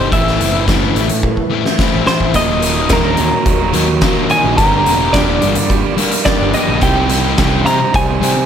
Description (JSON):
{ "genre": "quiet-loud alternative rock", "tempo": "107 BPM", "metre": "4/4", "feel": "straight", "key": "unclear", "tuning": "A4 = 440 Hz", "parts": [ { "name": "twelve-string electric guitar", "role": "melody", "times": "0.0-8.5 s", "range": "Bb4 to Bb5", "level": "-17 LUFS", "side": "equal", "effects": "tremolo, digital delay" }, { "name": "electric guitar through a small old amp", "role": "arpeggios", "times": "0.0-8.5 s", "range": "Eb2 to G4", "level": "-21 LUFS", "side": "right 1 dB", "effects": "digital delay" }, { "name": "sludgy distorted guitar", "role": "riff", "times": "0.0-8.4 s", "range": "Eb2 to G4", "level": "-19 LUFS", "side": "left 10 dB", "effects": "overdrive" }, { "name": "fuzz picked electric bass", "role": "bass", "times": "0.0-8.5 s", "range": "Eb1 to C3", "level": "-19 LUFS", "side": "right 1 dB", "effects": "overdrive" }, { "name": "oversized low-tuned drum kit", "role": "drums", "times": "0.1-8.4 s", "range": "hi-hat, kick drum, snare drum, toms", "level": "-17 LUFS", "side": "equal", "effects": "none" }, { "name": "thick fuzz guitar", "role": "riff", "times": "2.4-8.5 s", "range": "Eb2 to G4", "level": "-20 LUFS", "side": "right 12 dB", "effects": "distortion" } ], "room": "light reverb, studio reverb", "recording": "none", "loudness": "-11 LUFS", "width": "side -8 dB against mid", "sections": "0.0-8.5 A section", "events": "clean electric guitar solo 0.0-8.5; drum fill 1.2-2.4", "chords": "0.1 Am; 2.4 Ebm; 4.6 Gm; 6.8 Cm" }